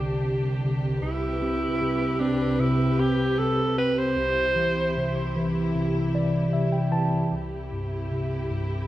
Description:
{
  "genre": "pop ballad",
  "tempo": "76 BPM",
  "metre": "4/4",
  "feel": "straight",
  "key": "C major",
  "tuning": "A4 = 440 Hz",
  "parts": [
    { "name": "clear alto saxophone", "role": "melody", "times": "0.0-5.6 s", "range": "D4 to C5", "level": "-26 LUFS", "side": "right 1 dB", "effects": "none" },
    { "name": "tine electric piano", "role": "accompaniment", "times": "0.0-8.9 s", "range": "G1 to A5", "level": "-25 LUFS", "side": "equal", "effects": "medium stereo tremolo" },
    { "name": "warm studio string section", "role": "sustained chords", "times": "0.0-8.9 s", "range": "C2 to B4", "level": "-30 LUFS", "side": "equal", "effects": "none" }
  ],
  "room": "moderate lush hall reverb, RT60 2.3 s",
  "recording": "rough home demo mix",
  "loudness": "-22 LUFS",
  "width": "side -14 dB against mid",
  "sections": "0.0-7.3 A section; 7.3-8.9 B section",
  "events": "tine electric piano fill 5.7-7.3",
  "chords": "0.0 Csus2; 1.0 Cmaj7; 4.2 C"
}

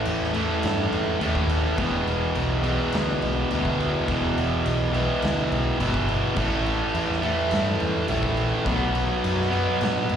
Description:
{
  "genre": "stoner and doom metal",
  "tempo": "105 BPM",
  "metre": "4/4",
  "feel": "straight",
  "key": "E minor",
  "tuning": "A4 = 440 Hz",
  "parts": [
    { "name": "fuzz guitar", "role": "riff", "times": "0.0-10.2 s", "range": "E2 to B3", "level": "-23 LUFS", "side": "right 1 dB", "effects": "distortion, slapback echo" },
    { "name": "growling picked electric bass", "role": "bass", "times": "0.1-10.2 s", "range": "E1 to A2", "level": "-27 LUFS", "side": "equal", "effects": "overdrive" },
    { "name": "oversized low-tuned drum kit", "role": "drums", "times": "0.1-10.2 s", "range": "crash cymbal, kick drum, snare drum", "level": "-30 LUFS", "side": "left 1 dB", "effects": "none" }
  ],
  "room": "little or no reverb",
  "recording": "live gig heard through the venue's PA, recital hall reverb",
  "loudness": "-21 LUFS",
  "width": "side -8 dB against mid",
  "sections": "0.0-10.2 A section",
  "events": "none",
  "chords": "0.0 A5; 1.8 E5; 6.4 A5; 8.7 B5"
}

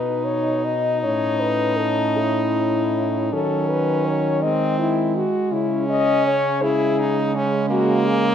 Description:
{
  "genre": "classical, lyrical piece for horn quartet",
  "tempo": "54 BPM (dotted quarters)",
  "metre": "6/8",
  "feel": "uneven beats, rubato",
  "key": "C# minor",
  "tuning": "A4 = 440 Hz",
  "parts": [
    { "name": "dark French horn", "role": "melody", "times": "0.0-8.3 s", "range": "E4 to D#5", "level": "-22 LUFS", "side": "left 6 dB", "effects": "none" },
    { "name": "mellow French horn", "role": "second line", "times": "0.0-8.3 s", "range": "F#3 to D#4", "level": "-26 LUFS", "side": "right 8 dB", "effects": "none" },
    { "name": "clear French horn", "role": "accompaniment", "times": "0.0-8.3 s", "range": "A#3 to E4", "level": "-23 LUFS", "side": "left 1 dB", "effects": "none" },
    { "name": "mellow French horn", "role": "bass", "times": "0.0-8.3 s", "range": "A2 to D#3", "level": "-25 LUFS", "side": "right 2 dB", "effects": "none" }
  ],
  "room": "moderate recital hall reverb, RT60 1.4 s",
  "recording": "none",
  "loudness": "-18 LUFS",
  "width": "side -8 dB against mid",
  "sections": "0.0-8.3 A section",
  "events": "none",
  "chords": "0.0 Badd9; 1.0 A; 3.3 D#m7b5; 4.4 G#/D#; 5.5 C#5"
}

